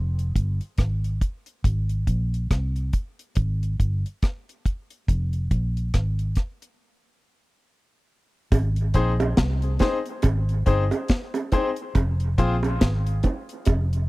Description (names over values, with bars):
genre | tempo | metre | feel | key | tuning
dub reggae | 70 BPM | 4/4 | swing 59% on 16ths | Ab major | A4 = 440 Hz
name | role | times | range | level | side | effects
vintage muted fingered electric bass | bass | 0.0-14.1 s | F1 to C2 | -23 LUFS | equal | none
deep reggae drum kit | drums | 0.2-14.1 s | hi-hat, kick drum, rim click, snare drum | -22 LUFS | equal | none
bongos | percussion | 8.5-13.9 s | none | -29 LUFS | right 4 dB | dub echo
bright grand piano | stabs | 8.9-12.5 s | C4 to C5 | -28 LUFS | left 4 dB | dub echo
room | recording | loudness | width
small room ambience | dry, close 1970s-style studio recording | -22 LUFS | side -20 dB against mid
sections
0.0-8.5 A section; 8.5-14.1 B section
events
break 0.0-8.5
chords
0.0 Fm; 1.6 Ab; 5.1 Fm; 8.5 Ab; 12.0 Fm